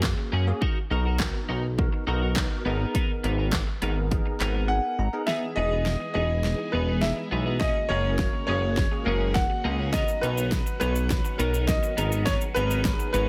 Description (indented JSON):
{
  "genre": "dance-pop",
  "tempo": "103 BPM",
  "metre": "4/4",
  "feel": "straight",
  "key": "B major",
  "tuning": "A4 = 440 Hz",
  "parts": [
    { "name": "bell-like tine electric piano", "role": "accompaniment", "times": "0.0-13.3 s", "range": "A#3 to A#5", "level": "-36 LUFS", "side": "equal", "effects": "ensemble chorus, sidechain pumping" },
    { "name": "twelve-string electric guitar", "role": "riff", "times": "0.0-13.3 s", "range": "A#3 to A#4", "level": "-35 LUFS", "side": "equal", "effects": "analog chorus" },
    { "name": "chorused synth bass", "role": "bass", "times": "0.0-13.3 s", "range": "E1 to F#2", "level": "-29 LUFS", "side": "equal", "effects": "sidechain pumping" },
    { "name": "pop drum kit", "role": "drums", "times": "0.0-13.3 s", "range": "handclaps, hi-hat, kick drum, shaker, snare drum", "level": "-29 LUFS", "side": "equal", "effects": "none" },
    { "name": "clear concert grand piano", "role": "melody", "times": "4.7-13.3 s", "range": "A#4 to F#5", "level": "-31 LUFS", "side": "equal", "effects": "digital delay" },
    { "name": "phased string machine", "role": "sustained chords", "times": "5.3-13.3 s", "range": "C#3 to G#4", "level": "-40 LUFS", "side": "equal", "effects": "ensemble chorus, phaser, sidechain pumping" }
  ],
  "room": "little or no reverb",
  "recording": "none",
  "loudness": "-26 LUFS",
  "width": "mono",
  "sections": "0.0-5.3 A section; 5.3-13.3 B section",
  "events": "tine electric piano fill 4.1-5.3; silent gap 4.7-5.3; build-up 5.3-13.3; drum fill 5.3-13.3",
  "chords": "0.0 F#add9; 0.6 Bmaj7; 2.7 G#madd9; 5.3 Emaj7; 7.6 F#add9; 9.9 Bmaj7; 12.0 G#madd9",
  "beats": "0.04 | 0.62 1.20 1.78 2.37 | 2.95 3.53 4.11 4.70 | 5.28 5.86 6.44 7.03 | 7.61 8.19 8.77 9.36 | 9.94 10.52 11.10 11.69 | 12.27 12.85"
}